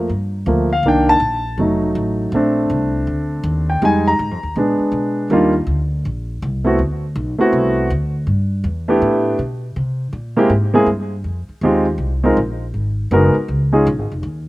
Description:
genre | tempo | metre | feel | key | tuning
jazz, big band swing | 161 BPM | 4/4 | swing 63% on 8ths | Bb major | A4 = 439 Hz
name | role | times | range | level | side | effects
warm concert grand piano | accompaniment | 0.0-13.9 s | Eb3 to Bb5 | -15 LUFS | equal | slapback echo
upright bass | bass | 0.0-14.5 s | F1 to C3 | -20 LUFS | equal | none
room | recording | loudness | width
little or no reverb | recorded outdoors, with no room sound | -15 LUFS | side -18 dB against mid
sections
0.0-5.3 A section; 5.3-14.5 B section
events
grand piano solo 0.0-5.3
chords
0.0 Gm9; 0.8 Cm9; 1.6 F7b9; 2.3 Bbmaj7; 3.8 Fm7; 4.6 Bb7b9; 5.3 Ebmaj9; 6.8 D13; 8.3 G69; 9.8 C7b13; 11.3 Fm9; 12.7 Abm7; 13.5 Db9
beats
0.10 0.48 | 0.85 1.22 1.59 1.96 | 2.33 2.70 3.08 3.45 | 3.82 4.19 4.56 4.93 | 5.30 5.68 6.05 6.42 | 6.79 7.16 7.54 7.91 | 8.28 8.65 9.02 9.40 | 9.77 10.14 10.51 10.88 | 11.26 11.63 12.00 12.37 | 12.75 13.12 13.49 13.86 | 14.24

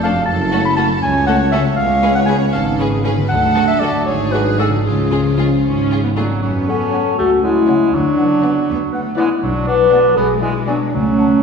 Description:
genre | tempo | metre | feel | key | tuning
cinematic | 79 BPM (dotted quarters) | 6/8 | straight | F# minor | A4 = 440 Hz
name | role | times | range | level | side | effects
rich studio violin section | melody | 0.0-10.9 s | E#4 to G#5 | -27 LUFS | left 2 dB | none
mellow clarinet | second line | 0.0-11.3 s | G#4 to B5 | -20 LUFS | equal | none
rich studio violin section | second line | 0.0-10.9 s | D4 to D5 | -27 LUFS | left 1 dB | none
rich studio viola section | accompaniment | 0.0-10.9 s | F#3 to D4 | -26 LUFS | right 2 dB | none
mellow French horn section | sustained chords | 0.0-11.4 s | E#3 to B4 | -18 LUFS | left 2 dB | none
concert harp | arpeggios | 0.0-11.4 s | F2 to B4 | -24 LUFS | left 4 dB | none
mellow tuba | bass | 0.0-6.3 s | F1 to D2 | -22 LUFS | right 1 dB | none
rich studio cello section | bass | 0.0-11.4 s | C#2 to B3 | -22 LUFS | right 3 dB | none
rich studio double bass section | bass | 0.0-11.4 s | F1 to F#2 | -24 LUFS | right 3 dB | none
mellow cor anglais | second line | 6.2-11.4 s | F#3 to D4 | -23 LUFS | right 4 dB | none
mellow hollow concert flute | second line | 6.7-11.3 s | F#5 to A5 | -28 LUFS | left 1 dB | none
room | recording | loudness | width
wet scoring stage reverb, RT60 1.8 s | heard from further back in the room | -13 LUFS | side -6 dB against mid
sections
0.0-6.4 A section; 6.4-11.4 B section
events
none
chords
0.3 F#m; 1.8 C#5; 3.3 D; 4.1 Bm69/G#; 4.9 C#; 6.4 F#m; 7.9 Bm/D; 9.4 Bm; 10.2 G#dim/B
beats
| 0.28 1.02 | 1.77 2.53 | 3.29 4.07 | 4.86 5.64 | 6.42 7.19 | 7.94 8.68 | 9.43 10.17 | 10.93

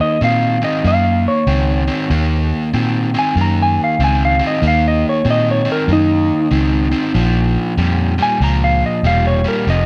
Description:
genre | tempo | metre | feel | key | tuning
electric blues shuffle | 95 BPM | 4/4 | swing 63% on 8ths | unclear | A4 = 440 Hz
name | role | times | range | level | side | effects
clean lap steel guitar | melody | 0.0-9.9 s | Eb4 to Bb5 | -20 LUFS | equal | none
crunchy overdriven guitar | riff | 0.0-9.9 s | F2 to C4 | -21 LUFS | equal | none
vintage muted fingered electric bass | bass | 0.2-9.9 s | E1 to Bb2 | -18 LUFS | equal | none
room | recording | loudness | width
moderate spring reverb, RT60 1.8 s | none | -15 LUFS | mono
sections
0.0-9.9 A section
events
electric slide guitar solo 0.0-9.9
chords
0.0 Ebm7; 7.1 Bbm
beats
0.21 0.84 1.47 | 2.10 2.73 3.36 3.99 | 4.62 5.25 5.88 6.51 | 7.14 7.78 8.40 9.04 | 9.67

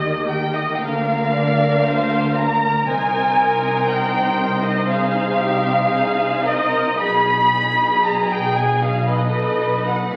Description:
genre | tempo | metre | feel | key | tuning
classical, slow romantic movement for string orchestra | 52-60 BPM | 4/4 | rubato | unclear | A4 = 436 Hz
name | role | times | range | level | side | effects
muted studio violin section | second line | 0.0-10.2 s | Eb5 to Cb6 | -21 LUFS | equal | none
muted studio viola section | accompaniment | 0.0-10.2 s | Bb3 to C5 | -28 LUFS | equal | none
muted chamber cello section | bass | 0.0-10.2 s | Cb3 to Eb3 | -29 LUFS | equal | none
muted studio double bass section | bass | 0.0-10.2 s | Cb2 to Eb2 | -28 LUFS | equal | none
muted studio violin section | melody | 0.8-10.1 s | G4 to D5 | -27 LUFS | equal | none
room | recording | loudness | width
wet recital hall reverb, RT60 1.4 s | very old 78 rpm record, vinyl crackle | -19 LUFS | mono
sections
0.0-10.2 A section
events
none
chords
0.0 Eb; 0.8 Bb/D; 2.9 Ab/C; 7.0 Abm/Cb; 9.1 B7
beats
0.80 1.85 | 2.88 3.88 4.89 5.89 | 7.00 8.05 9.07 10.13

